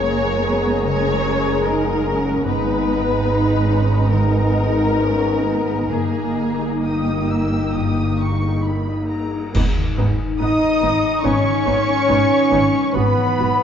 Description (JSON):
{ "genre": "cinematic, emotional film score for orchestra", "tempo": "65-74 BPM", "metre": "4/4", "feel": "rubato", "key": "unclear", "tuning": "A4 = 442 Hz", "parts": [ { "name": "muted studio violin section", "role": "melody", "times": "0.0-13.6 s", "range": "A#5 to E6", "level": "-28 LUFS", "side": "left 1 dB", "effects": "none" }, { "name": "muted symphonic violin section", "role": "second line", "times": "0.0-13.6 s", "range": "G4 to D#5", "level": "-25 LUFS", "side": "left 3 dB", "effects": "none" }, { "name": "muted symphonic viola section", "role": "accompaniment", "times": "0.0-13.5 s", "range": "G#3 to G#4", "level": "-26 LUFS", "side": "right 2 dB", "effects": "none" }, { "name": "mellow French horn section", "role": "sustained chords", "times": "0.0-13.6 s", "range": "A#3 to A#4", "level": "-23 LUFS", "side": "left 1 dB", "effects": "none" }, { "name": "concert harp", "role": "arpeggios", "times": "0.0-13.6 s", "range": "F#2 to G#5", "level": "-24 LUFS", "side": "left 5 dB", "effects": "none" }, { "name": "muted symphonic cello section", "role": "bass", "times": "0.0-13.5 s", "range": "G#2 to D#4", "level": "-26 LUFS", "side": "right 3 dB", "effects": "none" }, { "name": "muted symphonic double bass section", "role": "bass", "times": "0.0-13.5 s", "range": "F#1 to G#1", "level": "-23 LUFS", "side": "right 2 dB", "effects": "none" }, { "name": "cymbal swell, clash cymbals and concert bass drum", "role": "percussion", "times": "5.9-11.2 s", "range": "none", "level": "-26 LUFS", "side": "equal", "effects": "none" }, { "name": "dark cor anglais", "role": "second line", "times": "10.4-13.6 s", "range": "B3 to D#4", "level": "-24 LUFS", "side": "right 3 dB", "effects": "none" }, { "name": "mellow hollow silver concert flute", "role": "second line", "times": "10.4-13.6 s", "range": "B4 to D#5", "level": "-24 LUFS", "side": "right 2 dB", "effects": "none" } ], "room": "wet recital hall reverb, RT60 1.5 s", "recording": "dark, warm production, nothing above 7.7 kHz", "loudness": "-16 LUFS", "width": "side -8 dB against mid", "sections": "0.0-9.6 A section; 9.6-13.6 B section", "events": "band accent 9.6-10.4", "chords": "0.0 F#add9; 2.5 G#madd9; 5.9 D#/G; 9.6 G#m; 12.9 Eadd9/G#" }